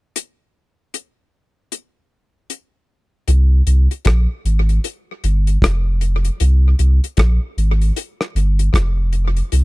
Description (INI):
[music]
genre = roots reggae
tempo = 77 BPM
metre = 4/4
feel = swing 61% on 16ths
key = unclear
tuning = A4 = 441 Hz
[part]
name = damped 70s drum kit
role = drums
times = 0.2-9.6 s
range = hi-hat, kick drum, rim click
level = -19 LUFS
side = left 1 dB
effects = tape echo
[part]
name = warm sub bass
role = bass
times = 3.3-9.6 s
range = F1 to C2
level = -14 LUFS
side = equal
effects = none
[sound]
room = little or no reverb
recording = dry, close 1970s-style studio recording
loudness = -14 LUFS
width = side -22 dB against mid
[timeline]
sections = 0.2-3.3 A section; 3.3-9.6 B section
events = none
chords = none